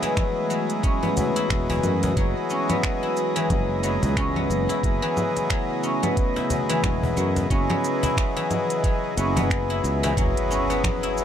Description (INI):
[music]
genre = organic downtempo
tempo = 90 BPM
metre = 4/4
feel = swing 58% on 16ths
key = F# dorian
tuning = A4 = 439 Hz
[part]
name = hand-pumped harmonium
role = accompaniment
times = 0.0-11.2 s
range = F#3 to G#4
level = -28 LUFS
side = left 1 dB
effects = sidechain pumping, ping-pong delay
[part]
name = warbly tape-like pad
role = sustained chords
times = 0.0-10.1 s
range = C#3 to D#5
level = -32 LUFS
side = right 1 dB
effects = chorus, built-in reverb, sidechain pumping
[part]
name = guzheng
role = arpeggios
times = 0.0-11.2 s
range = E3 to E4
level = -26 LUFS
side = left 2 dB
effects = ping-pong delay
[part]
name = organic electronic drum kit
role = drums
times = 0.0-11.2 s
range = congas, finger snaps, hi-hat, shaker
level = -29 LUFS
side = equal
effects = none
[part]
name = cajon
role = percussion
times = 0.0-10.8 s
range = none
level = -31 LUFS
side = left 2 dB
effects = none
[part]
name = drifting glass-harmonics texture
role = texture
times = 0.0-10.2 s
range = D#5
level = -38 LUFS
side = right 3 dB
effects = chorus, built-in reverb
[part]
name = electronic kick drum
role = drums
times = 0.2-11.0 s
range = none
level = -25 LUFS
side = right 1 dB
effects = none
[part]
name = sustaining fretless electric bass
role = bass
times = 1.5-10.3 s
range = E1 to F#2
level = -26 LUFS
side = right 1 dB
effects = tube saturation, sidechain pumping
[part]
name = impact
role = sound effects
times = 10.2-11.2 s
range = none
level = -29 LUFS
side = right 1 dB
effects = none
[sound]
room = light reverb, digital ambience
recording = none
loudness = -21 LUFS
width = side -9 dB against mid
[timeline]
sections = 0.0-10.2 A section; 10.2-11.2 B section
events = impact 10.2-11.2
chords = 0.0 F#m9; 2.2 Emaj9/F#; 4.8 B9sus4/F#; 7.5 C#m9/F#; 10.2 F#7(no3)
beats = 0.17 0.84 1.51 | 2.17 2.84 3.51 4.17 | 4.84 5.51 6.17 6.84 | 7.51 8.17 8.84 9.51 | 10.17 10.84